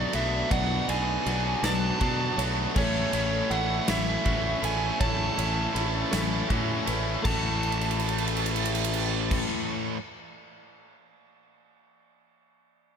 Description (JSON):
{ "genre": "post-rock", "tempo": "53 BPM (dotted quarters)", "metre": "6/8", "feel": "straight", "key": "A major", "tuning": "A4 = 444 Hz", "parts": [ { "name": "overdriven slide guitar", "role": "melody", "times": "0.0-9.4 s", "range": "C#5 to A5", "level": "-31 LUFS", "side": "right 3 dB", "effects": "analog delay" }, { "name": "dark studio string section", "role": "sustained chords", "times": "0.0-9.4 s", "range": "D4 to C#6", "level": "-43 LUFS", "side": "left 3 dB", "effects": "none" }, { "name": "felt-muted upright piano", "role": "arpeggios", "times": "0.0-9.5 s", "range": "A4 to F#5", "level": "-42 LUFS", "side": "right 6 dB", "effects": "none" }, { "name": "twangy electric guitar", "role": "arpeggios", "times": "0.0-10.0 s", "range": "B2 to D5", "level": "-37 LUFS", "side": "left 4 dB", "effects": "analog delay" }, { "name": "distorted electric guitar", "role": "riff", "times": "0.0-10.0 s", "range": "A2 to F#4", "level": "-32 LUFS", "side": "left 15 dB", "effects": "overdrive" }, { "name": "tight distorted guitar", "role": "riff", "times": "0.0-10.0 s", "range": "A2 to F#4", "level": "-32 LUFS", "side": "right 12 dB", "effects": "distortion" }, { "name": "fuzz fingered electric bass", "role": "bass", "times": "0.0-9.4 s", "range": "A1 to B2", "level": "-30 LUFS", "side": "equal", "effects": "overdrive" }, { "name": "huge arena drum kit", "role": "drums", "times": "0.1-11.0 s", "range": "crash cymbal, kick drum, ride cymbal, snare drum", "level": "-31 LUFS", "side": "equal", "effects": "none" } ], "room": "light reverb, studio ambience", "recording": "none", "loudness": "-24 LUFS", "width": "side -7 dB against mid", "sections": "0.0-7.3 A section; 7.3-9.5 B section", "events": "drum fill 7.6-9.3", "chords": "0.0 Bm7; 2.8 A6" }